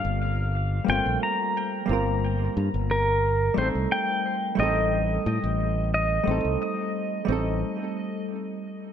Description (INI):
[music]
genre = sunset chillout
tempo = 89 BPM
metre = 4/4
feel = straight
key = unclear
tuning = A4 = 441 Hz
[part]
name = pedal steel guitar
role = melody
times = 0.0-8.3 s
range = Bb4 to Bb5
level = -27 LUFS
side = right 1 dB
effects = tape echo
[part]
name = hollow-body jazz guitar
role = accompaniment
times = 0.0-8.9 s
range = G3 to Bb4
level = -29 LUFS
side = moving between left 6 dB and right 3 dB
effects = auto-pan, tape echo
[part]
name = modern bright fingered electric bass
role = bass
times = 0.0-7.6 s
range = G1 to A2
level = -26 LUFS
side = equal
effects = none
[sound]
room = moderate echo chamber reverb, RT60 1.7 s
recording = echo-heavy mix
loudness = -23 LUFS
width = side -8 dB against mid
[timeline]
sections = 0.0-8.9 A section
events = break 7.6-8.9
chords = 0.0 Gm11; 3.6 Am7b5